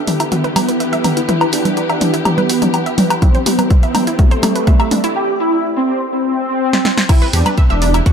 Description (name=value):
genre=melodic techno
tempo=124 BPM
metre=4/4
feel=straight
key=E minor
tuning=A4 = 441 Hz
part: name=wide unison lead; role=melody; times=0.0-8.1 s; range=A3 to G4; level=-18 LUFS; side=equal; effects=ensemble chorus, sidechain pumping, tape echo
part: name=warm symphonic string section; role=sustained chords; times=0.0-8.1 s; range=E3 to G4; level=-25 LUFS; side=left 1 dB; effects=sidechain pumping
part: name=wide unison pluck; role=arpeggios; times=0.0-8.1 s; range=D4 to E6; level=-22 LUFS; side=right 2 dB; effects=sidechain pumping, tape echo
part: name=granular cloud pad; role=texture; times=0.0-8.1 s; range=C4 to F#5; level=-25 LUFS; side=left 1 dB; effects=built-in reverb, sidechain pumping
part: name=punchy analog drum machine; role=drums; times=0.1-8.1 s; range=congas, crash cymbal, hi-hat, snare drum, toms, woodblock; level=-17 LUFS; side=equal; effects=sidechain pumping on hats, sidechain pumping on perc, sidechain pumping on toms, sidechain pumping on cymbals, tape echo
part: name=electronic kick drum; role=drums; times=3.2-8.1 s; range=none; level=-11 LUFS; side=equal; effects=none
part: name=dark detuned saw bass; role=bass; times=7.3-8.1 s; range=E1 to E2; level=-15 LUFS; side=equal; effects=sidechain pumping
room=light reverb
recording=echo-heavy mix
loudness=-12 LUFS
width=side -7 dB against mid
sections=0.0-7.1 A section; 7.1-8.1 B section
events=build-up 0.0-7.1; drum fill 0.0-5.2, 6.7-7.1; filter sweep on synth arpeggio sound 0.0-7.1; filter sweep on analog synth lead 0.0-7.1; break 5.2-7.1; drop 7.1-8.1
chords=0.0 Em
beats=0.32 0.80 | 1.29 1.77 2.25 2.74 | 3.22 3.71 4.19 4.67 | 5.16 5.64 6.12 6.61 | 7.09 7.58 8.06